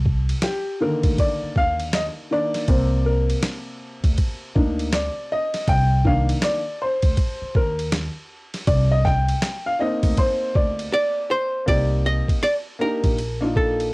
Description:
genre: hip hop, jazz-hop.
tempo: 80 BPM.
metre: 4/4.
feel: swing 63% on 16ths.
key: C minor.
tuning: A4 = 440 Hz.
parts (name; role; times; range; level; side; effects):
upright bass; bass; 0.0-13.9 s; Bb1 to Eb2; -22 LUFS; equal; none.
boom bap sampler-style drum kit; drums; 0.1-13.9 s; hi-hat, kick drum, ride cymbal, rim click, snare drum; -23 LUFS; equal; cassette tape.
warm upright piano; accompaniment; 0.4-13.9 s; C3 to G5; -23 LUFS; left 1 dB; none.
archtop guitar, miked and amplified; melody; 10.9-13.9 s; A4 to Eb5; -22 LUFS; right 1 dB; cassette tape.
room: light reverb.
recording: home recording on cassette.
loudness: -19 LUFS.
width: side -24 dB against mid.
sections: 0.0-11.7 A section; 11.7-13.9 B section.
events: upright piano solo 0.0-11.7; drums muted 10.9-11.7.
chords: 0.0 Cm9.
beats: 0.43 1.18 1.93 | 2.68 3.43 4.18 4.93 | 5.68 6.43 7.18 7.93 | 8.68 9.43 10.18 10.93 | 11.68 12.43 13.18 13.93.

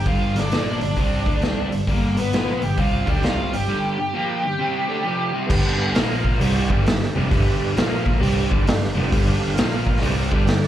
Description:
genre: blues rock power trio and southern rock.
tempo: 133 BPM.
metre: 4/4.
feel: swing 65% on 8ths.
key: unclear.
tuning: A4 = 440 Hz.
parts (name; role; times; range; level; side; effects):
octave-fuzz lead guitar; melody; 0.0-5.3 s; Bb3 to G4; -25 LUFS; equal; distortion, slapback echo.
crunchy overdriven guitar; riff; 0.0-10.7 s; F2 to D4; -24 LUFS; equal; slapback echo.
warm double bass; bass; 0.0-10.7 s; F1 to D2; -24 LUFS; equal; none.
vintage drum kit; drums; 0.1-10.7 s; crash cymbal, hi-hat, kick drum, snare drum; -22 LUFS; equal; none.
overdriven tonewheel organ; sustained chords; 5.5-10.7 s; Bb3 to F5; -28 LUFS; right 5 dB; slow rotary speaker, chorus vibrato.
room: small room ambience.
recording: live gig heard through the venue's PA, club reverb.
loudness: -18 LUFS.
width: side -12 dB against mid.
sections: 0.0-5.5 A section; 5.5-10.7 B section.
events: break 3.7-5.5.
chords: 0.0 G5; 5.5 G; 6.0 Bb5; 6.4 G; 7.8 Bb5; 8.2 G; 9.6 Bb5; 10.0 G.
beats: | 0.06 0.52 0.97 1.43 | 1.88 2.33 2.79 3.24 | 3.70 4.15 4.60 5.05 | 5.51 5.96 6.41 6.86 | 7.31 7.76 8.21 8.66 | 9.11 9.56 10.02 10.47.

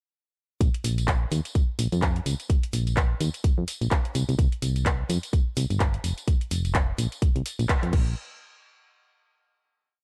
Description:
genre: piano house.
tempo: 127 BPM.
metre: 4/4.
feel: swing 58% on 16ths.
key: Bb dorian.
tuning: A4 = 439 Hz.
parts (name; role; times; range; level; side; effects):
solid FM bass; bass; 0.6-8.1 s; F1 to F2; -28 LUFS; equal; sidechain pumping.
electronic kick drum; drums; 0.6-8.0 s; none; -25 LUFS; equal; none.
house drum kit; drums; 0.6-8.0 s; crash cymbal, handclaps, hi-hat, tambourine; -34 LUFS; equal; none.
room: little or no reverb.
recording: none.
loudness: -25 LUFS.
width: mono.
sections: 0.6-8.2 drop; 8.2-10.0 final hit.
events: drop 0.6-8.2; band accent 7.7.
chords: none.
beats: | 0.61 1.08 1.55 2.02 | 2.50 2.97 3.44 3.91 | 4.39 4.86 5.33 5.80 | 6.28 6.75 7.22 7.69.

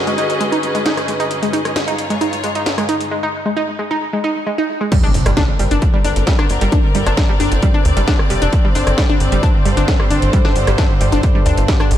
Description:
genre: driving peak-time techno.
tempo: 133 BPM.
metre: 4/4.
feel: straight.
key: unclear.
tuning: A4 = 440 Hz.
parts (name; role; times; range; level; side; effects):
analog drone; drone; 0.0-12.0 s; G2 to D3; -25 LUFS; left 1 dB; chorus, sidechain pumping.
bright studio string section; texture; 0.0-12.0 s; C4 to Eb5; -22 LUFS; equal; sidechain pumping.
analog pluck; riff; 0.1-11.9 s; G3 to Eb4; -19 LUFS; equal; chorus, sidechain pumping, diffuse ambient delay.
techno drum kit; drums; 0.1-12.0 s; crash cymbal, hi-hat, rim click, snare drum; -23 LUFS; equal; none.
electronic kick drum; drums; 4.9-11.8 s; none; -15 LUFS; equal; overdrive.
impact; sound effects; 4.9-6.7 s; none; -23 LUFS; equal; none.
tight sequencer bass; bass; 5.1-12.0 s; F1 to D2; -17 LUFS; equal; sidechain pumping.
room: light reverb.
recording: none.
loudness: -13 LUFS.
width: side -11 dB against mid.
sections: 0.0-4.9 A section; 4.9-12.0 B section.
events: filter sweep on synth arpeggio sound 0.0-4.9; drop 4.9-12.0; impact 4.9-6.7.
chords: 0.0 Abm; 4.9 Gm.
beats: 0.41 0.86 | 1.31 1.76 2.21 2.66 | 3.11 3.56 4.01 4.47 | 4.92 5.37 5.82 6.27 | 6.72 7.17 7.62 8.07 | 8.53 8.98 9.43 9.88 | 10.33 10.78 11.23 11.69.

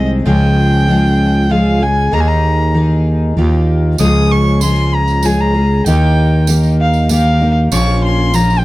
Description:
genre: acoustic folk duo or small band.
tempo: 96 BPM.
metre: 3/4.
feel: straight.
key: unclear.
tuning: A4 = 441 Hz.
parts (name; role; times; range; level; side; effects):
warm fiddle; melody; 0.0-8.6 s; F5 to Eb6; -18 LUFS; equal; none.
fingerpicked twelve-string acoustic guitar; accompaniment; 0.0-8.6 s; Bb2 to Ab4; -15 LUFS; left 1 dB; none.
growling FM bass; bass; 0.0-8.6 s; Bb1 to Eb2; -13 LUFS; equal; none.
tambourine; percussion; 4.0-8.6 s; none; -24 LUFS; right 11 dB; none.
room: little or no reverb.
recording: dry, close 1970s-style studio recording.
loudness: -10 LUFS.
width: side -18 dB against mid.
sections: 0.0-8.6 A section.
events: none.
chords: 0.3 Db; 2.1 Ebsus4; 3.4 Ebadd9; 4.0 Db; 5.9 Eb; 7.7 Bbm.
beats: | 0.26 0.88 1.51 | 2.13 2.75 3.37 | 3.99 4.62 5.24 | 5.86 6.48 7.10 | 7.72 8.34.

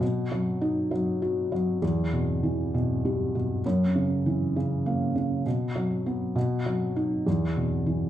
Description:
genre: pop.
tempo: 66 BPM (dotted quarters).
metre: 6/8.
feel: straight.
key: E harmonic minor.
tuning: A4 = 438 Hz.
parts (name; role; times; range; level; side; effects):
felt-muted upright piano; solo; 0.0-8.1 s; E2 to F#4; -24 LUFS; equal; none.
room: wet large studio reverb, RT60 0.9 s.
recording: band playing live in one room.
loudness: -24 LUFS.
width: side -12 dB against mid.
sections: 0.0-8.1 A section.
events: none.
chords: 0.0 B; 1.8 Em; 3.6 F#7; 5.5 B5; 6.4 B; 7.3 E5.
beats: | 0.01 0.92 | 1.83 2.73 | 3.64 4.55 | 5.45 6.36 | 7.26.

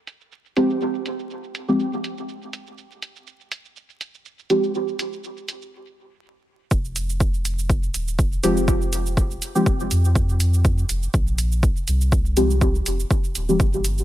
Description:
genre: dub techno.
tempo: 122 BPM.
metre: 4/4.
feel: swing 55% on 16ths.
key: F minor.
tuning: A4 = 437 Hz.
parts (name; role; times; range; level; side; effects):
electronic hi-hat and cabasa; drums; 0.1-14.0 s; none; -30 LUFS; right 3 dB; overdrive, low-pass filter on perc, low-pass filter on hats, low-pass filter on snare.
deep mellow chord stab; stabs; 0.6-4.8, 8.4-13.7 s; F3 to G4; -22 LUFS; equal; chorus, phaser, sidechain pumping, dub echo.
soft dub sub bass; bass; 6.7-14.0 s; Eb1 to F2; -22 LUFS; equal; sidechain pumping.
electronic kick drum; drums; 6.7-13.7 s; none; -21 LUFS; equal; overdrive.
room: little or no reverb.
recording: vinyl crackle.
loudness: -19 LUFS.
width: side -14 dB against mid.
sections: 0.0-6.7 A section; 6.7-14.0 B section.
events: break 5.7-6.7; filter sweep on synth stab 6.7-14.0.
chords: 0.0 Fmadd9.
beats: 0.32 | 0.81 1.30 1.79 2.29 | 2.78 3.27 3.76 4.25 | 4.75 5.24 5.73 6.22 | 6.71 7.21 7.70 8.19 | 8.68 9.17 9.66 10.16 | 10.65 11.14 11.63 12.12 | 12.62 13.11 13.60.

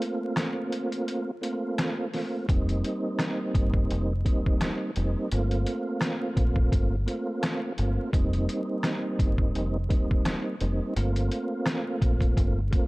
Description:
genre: hip hop, boom-bap hip-hop.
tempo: 85 BPM.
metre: 4/4.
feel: swing 56% on 16ths.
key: unclear.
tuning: A4 = 441 Hz.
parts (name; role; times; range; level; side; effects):
mellow tonewheel organ; accompaniment; 0.0-12.9 s; G3 to F4; -29 LUFS; right 1 dB; chorus vibrato, fast rotary speaker, cassette tape, high-pass filter, low-pass filter.
trip hop sampler-style drum kit; drums; 0.0-12.9 s; hi-hat, kick drum, rim click, snare drum; -27 LUFS; equal; none.
deep dub fingered electric bass; bass; 2.5-12.7 s; F1 to Bb1; -27 LUFS; equal; none.
room: little or no reverb.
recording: dark, warm production, vinyl crackle.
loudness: -25 LUFS.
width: side -22 dB against mid.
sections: 0.0-12.9 A section.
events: break 0.0-2.5.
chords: 0.0 Fadd11/A; 2.5 F7sus4; 5.3 Gm11; 8.1 F7sus4; 11.0 Gm11.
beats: 0.37 1.08 1.78 | 2.49 3.19 3.90 4.61 | 5.31 6.02 6.72 7.43 | 8.14 8.84 9.55 10.25 | 10.96 11.67 12.37.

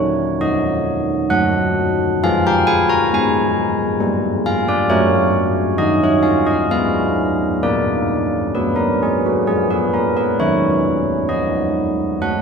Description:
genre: classical, tune for church bells.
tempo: 66 BPM.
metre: 3/4.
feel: straight.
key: Eb minor.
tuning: A4 = 440 Hz.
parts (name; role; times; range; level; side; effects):
carillon bells; solo; 0.0-12.4 s; Eb3 to Bb5; -15 LUFS; equal; none.
room: wet church reverb, RT60 2.8 s.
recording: minimal, uncompressed stereo recording.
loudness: -15 LUFS.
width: side -6 dB against mid.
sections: 0.0-12.4 A section.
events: none.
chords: 0.0 Ebm; 2.2 Fm69; 4.9 Ebm/Gb; 6.7 Fdim/Ab; 7.6 Bb; 10.4 Ebm.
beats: 0.39 1.30 | 2.21 3.11 4.01 | 4.90 5.80 6.70 | 7.62 8.53 9.46 | 10.39 11.30 12.20.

